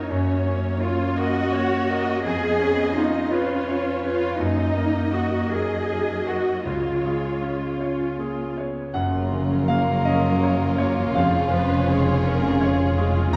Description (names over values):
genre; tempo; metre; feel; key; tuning
cinematic, emotional film score for orchestra; 55 BPM (dotted quarters); 6/8; rubato; F# major; A4 = 441 Hz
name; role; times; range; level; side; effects
bright concert grand piano; accompaniment; 0.0-13.4 s; C#2 to A#5; -27 LUFS; equal; none
warm symphonic viola section; accompaniment; 0.0-13.3 s; F#3 to D#5; -32 LUFS; equal; none
concert harp; arpeggios; 0.0-13.4 s; E#2 to A#5; -32 LUFS; equal; none
dark symphonic cello section; bass; 0.0-13.4 s; E#2 to G#4; -28 LUFS; equal; none
warm symphonic violin section; melody; 8.9-13.4 s; G#4 to A#4; -36 LUFS; equal; none
clear symphonic double bass section; bass; 8.9-13.4 s; E#1 to F#1; -27 LUFS; equal; none
warm symphonic violin section; second line; 9.0-13.4 s; C#4 to F#4; -32 LUFS; equal; none
mellow French horn section; sustained chords; 9.0-13.4 s; C#3 to C#4; -31 LUFS; equal; none
room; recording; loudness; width
wet scoring stage reverb, RT60 2.0 s; heard from further back in the room; -23 LUFS; mono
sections
0.0-9.0 A section; 9.0-13.4 B section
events
none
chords
0.0 F#maj7; 2.3 C#7/E#; 4.4 D#m/F#; 6.7 C#; 9.0 F#maj7; 11.2 C#/E#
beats
| 0.11 1.18 | 2.25 3.33 | 4.42 5.53 | 6.67 7.82 | 8.95 10.06 | 11.16 12.25 | 13.34